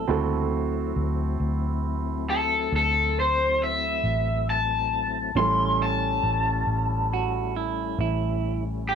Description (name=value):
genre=slow blues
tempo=46 BPM (dotted quarters)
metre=12/8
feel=straight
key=unclear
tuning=A4 = 438 Hz
part: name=clean electric guitar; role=second line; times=0.0-8.6 s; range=E4 to A4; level=-30 LUFS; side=right 15 dB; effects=none
part: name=warm grand piano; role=accompaniment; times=0.0-8.9 s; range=G3 to A4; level=-32 LUFS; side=right 10 dB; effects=none
part: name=mellow tonewheel organ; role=sustained chords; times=0.0-8.9 s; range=C#3 to F#4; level=-34 LUFS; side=left 15 dB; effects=chorus vibrato, slow rotary speaker
part: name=vintage muted fingered electric bass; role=bass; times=0.0-8.9 s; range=A1 to D2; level=-28 LUFS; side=equal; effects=none
part: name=raw garage guitar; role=melody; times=2.3-8.9 s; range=G4 to C6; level=-24 LUFS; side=left 2 dB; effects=overdrive, slapback echo
room=light reverb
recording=1960s-style stereo with parts hard left and right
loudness=-22 LUFS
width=side -7 dB against mid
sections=0.0-8.9 A section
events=none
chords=0.0 D7; 5.4 A7